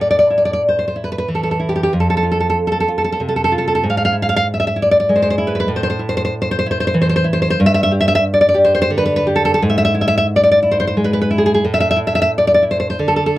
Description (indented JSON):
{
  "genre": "romantic piece for solo classical guitar",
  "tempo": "82-98 BPM",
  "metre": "3/4",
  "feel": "rubato",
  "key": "A minor",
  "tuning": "A4 = 441 Hz",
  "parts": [
    { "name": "nylon-string guitar", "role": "solo", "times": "0.0-13.4 s", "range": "F2 to F5", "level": "-13 LUFS", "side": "equal", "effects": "none" }
  ],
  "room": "light reverb",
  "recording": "none",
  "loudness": "-13 LUFS",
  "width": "side -16 dB against mid",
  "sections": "0.0-13.4 A section",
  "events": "none",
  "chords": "0.0 A5; 1.9 F5; 3.8 E/G#; 5.7 A5; 7.6 G5; 9.6 E/G#; 11.6 A5",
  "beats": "0.61 1.27 | 1.93 2.56 3.21 | 3.85 4.48 5.11 | 5.72 6.34 6.96 | 7.59 8.23 8.90 | 9.60 10.26 10.93 | 11.64 12.30 12.98"
}